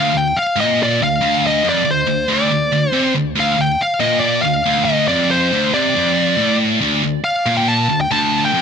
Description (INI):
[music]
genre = metal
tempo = 140 BPM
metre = 4/4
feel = straight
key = D phrygian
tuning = A4 = 439 Hz
[part]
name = high-gain lead guitar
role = melody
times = 0.0-8.6 s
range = C5 to A5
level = -17 LUFS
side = left 1 dB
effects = distortion, ping-pong delay
[part]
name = scooped high-gain guitar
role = riff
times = 0.0-8.6 s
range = D2 to C3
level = -16 LUFS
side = equal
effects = distortion
[sound]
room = light reverb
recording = none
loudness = -14 LUFS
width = side -7 dB against mid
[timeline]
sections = 0.0-8.6 A section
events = none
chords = 0.0 Dm